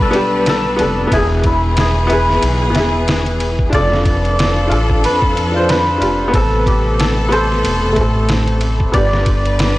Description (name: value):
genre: trip hop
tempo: 92 BPM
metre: 4/4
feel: swing 57% on 16ths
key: A minor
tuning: A4 = 436 Hz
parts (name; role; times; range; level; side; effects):
- santur; melody; 0.0-9.8 s; E4 to D5; -18 LUFS; equal; dub echo
- clear upright piano; accompaniment; 0.0-9.8 s; A3 to C5; -19 LUFS; left 1 dB; tremolo, tape echo
- rich symphonic string section; sustained chords; 0.0-9.8 s; C3 to B4; -22 LUFS; left 1 dB; none
- upright bass; bass; 0.0-9.8 s; E1 to F2; -18 LUFS; equal; none
- trip hop sampler-style drum kit; drums; 0.0-9.8 s; kick drum, ride cymbal, snare drum; -19 LUFS; equal; none
room: studio ambience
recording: dry, gritty hardware recording, transformer saturation, cassette tape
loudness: -12 LUFS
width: side -17 dB against mid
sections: 0.0-9.8 A section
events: none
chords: 0.0 G; 1.1 E; 3.7 Dm/F; 6.3 Amadd9; 8.9 G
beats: 0.46 | 1.11 1.77 2.42 3.07 | 3.72 4.38 5.03 5.68 | 6.33 6.98 7.63 8.29 | 8.94 9.59